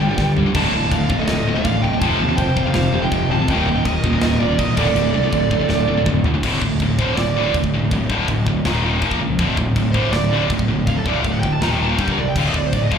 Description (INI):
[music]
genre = heavy metal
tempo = 162 BPM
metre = 4/4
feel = straight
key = D phrygian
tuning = A4 = 440 Hz
[part]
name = dark smooth lead guitar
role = melody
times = 0.0-7.5, 9.9-13.0 s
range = A4 to Bb5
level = -23 LUFS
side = right 4 dB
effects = overdrive, slapback echo, tape echo
[part]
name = high-gain lead guitar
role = second line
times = 0.0-6.0 s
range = A4 to F5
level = -30 LUFS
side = right 2 dB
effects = distortion, slapback echo
[part]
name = distorted electric guitar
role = riff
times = 0.0-6.4 s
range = D2 to G3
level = -27 LUFS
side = left 1 dB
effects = distortion, slapback echo
[part]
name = heavy high-gain guitar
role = riff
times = 0.0-13.0 s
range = D2 to Bb3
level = -23 LUFS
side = right 7 dB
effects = distortion, slapback echo
[part]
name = high-gain distorted guitar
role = riff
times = 0.0-13.0 s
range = D2 to Bb3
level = -22 LUFS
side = left 9 dB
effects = distortion, slapback echo
[part]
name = fuzz fingered electric bass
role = bass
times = 0.0-13.0 s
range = D1 to G2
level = -22 LUFS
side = equal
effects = overdrive
[part]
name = tight metal drum kit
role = drums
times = 0.2-13.0 s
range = china cymbal, crash cymbal, kick drum, snare drum, toms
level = -24 LUFS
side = equal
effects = none
[sound]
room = small room ambience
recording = live gig heard through the venue's PA, club reverb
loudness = -16 LUFS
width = side -7 dB against mid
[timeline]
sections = 0.0-6.4 A section; 6.4-13.0 B section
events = drum fill 0.2-0.5, 5.7-6.4; lead electric guitar solo 6.4-13.0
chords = 0.0 G5; 0.5 Dm; 2.0 F; 3.5 Eb; 4.8 D5; 8.7 Eb5; 9.0 Bb5; 9.4 D5; 11.6 Eb5; 12.0 G5; 12.4 Dm